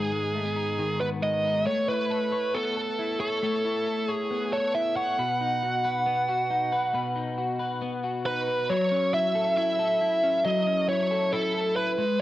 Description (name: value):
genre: indie pop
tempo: 136 BPM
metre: 4/4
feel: straight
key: F# dorian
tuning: A4 = 440 Hz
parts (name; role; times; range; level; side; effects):
- bluesy overdriven lead guitar; melody; 0.0-12.2 s; G#4 to F#5; -25 LUFS; right 2 dB; distortion
- electric guitar at the edge of break-up; arpeggios; 0.0-12.2 s; G#2 to C#5; -29 LUFS; left 4 dB; analog chorus
room: wet club reverb, RT60 0.5 s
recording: worn, warbling old tape, cassette tape, warbly pitch drift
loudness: -24 LUFS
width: side -14 dB against mid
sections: 0.0-8.7 A section; 8.7-12.2 B section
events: none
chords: 0.0 G#m; 1.7 Aadd9; 5.2 B; 8.7 F#m7